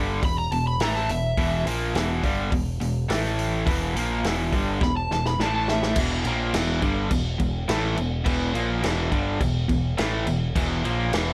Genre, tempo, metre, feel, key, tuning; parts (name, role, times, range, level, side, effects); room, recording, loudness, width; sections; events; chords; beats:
blues rock power trio and southern rock; 105 BPM; 4/4; straight; E minor; A4 = 440 Hz
cranked stack guitar; riff; 0.0-11.3 s; E2 to A#3; -28 LUFS; equal; overdrive
growling picked electric bass; bass; 0.0-11.3 s; E1 to A#1; -31 LUFS; equal; overdrive
vintage drum kit; drums; 0.2-11.3 s; crash cymbal, hi-hat, kick drum, snare drum; -30 LUFS; equal
overdriven slide guitar; melody; 0.3-6.0 s; E5 to B5; -30 LUFS; equal; analog delay
moderate club reverb, RT60 0.5 s; -24 LUFS; mono
0.0-6.0 A section; 6.0-11.3 B section
electric slide guitar solo 0.0-6.0; drum fill 4.8-6.0
0.0 Em; 3.1 A5; 3.7 Em; 5.4 A5; 6.0 Em
0.23 0.80 | 1.38 1.95 2.52 3.10 | 3.67 4.25 4.82 5.39 | 5.97 6.54 7.11 7.69 | 8.26 8.84 9.41 9.98 | 10.55 11.13